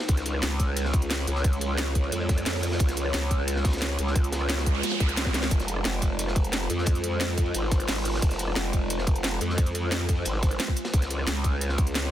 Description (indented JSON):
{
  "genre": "dark technical drum and bass",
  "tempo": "177 BPM",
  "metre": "4/4",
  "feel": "straight",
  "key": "unclear",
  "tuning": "A4 = 439 Hz",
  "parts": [
    { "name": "dark analog pad", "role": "sustained chords", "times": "0.0-12.1 s", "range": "Ab3 to Db5", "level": "-33 LUFS", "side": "right 1 dB", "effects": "chorus, phaser, sidechain pumping" },
    { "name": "crunchy breakbeat drum kit", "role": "drums", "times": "0.0-12.1 s", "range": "hi-hat, ride cymbal, snare drum", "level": "-37 LUFS", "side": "equal", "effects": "high-pass filter on cymbals, high-pass filter on hats, high-pass filter on snare, high-pass filter on room" },
    { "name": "growl bass", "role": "bass", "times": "0.1-12.1 s", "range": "F1 to F2", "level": "-28 LUFS", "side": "equal", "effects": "chorus, overdrive, sidechain pumping" },
    { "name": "drum and bass drum kit", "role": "drums", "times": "0.1-12.0 s", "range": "hi-hat, rim click, snare drum", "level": "-31 LUFS", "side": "equal", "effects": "none" },
    { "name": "electronic kick drum", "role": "drums", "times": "0.1-11.9 s", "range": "none", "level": "-24 LUFS", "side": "equal", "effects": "none" },
    { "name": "noise sweep", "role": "sound effects", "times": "4.4-5.5 s", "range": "none", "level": "-34 LUFS", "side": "right 4 dB", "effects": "none" }
  ],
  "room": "studio ambience",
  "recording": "dense, heavily limited modern master",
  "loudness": "-23 LUFS",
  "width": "side -12 dB against mid",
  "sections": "0.0-12.1 A section",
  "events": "noise sweep 4.4-5.5; drum fill 5.3",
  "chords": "0.1 Db; 5.5 Fm; 10.9 Db",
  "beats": "| 0.09 0.43 0.77 1.10 | 1.44 1.78 2.12 2.46 | 2.80 3.14 3.48 3.82 | 4.16 4.50 4.83 5.17 | 5.51 5.85 6.19 6.53 | 6.87 7.21 7.55 7.88 | 8.22 8.56 8.90 9.24 | 9.58 9.92 10.26 10.60 | 10.94 11.28 11.61 11.95"
}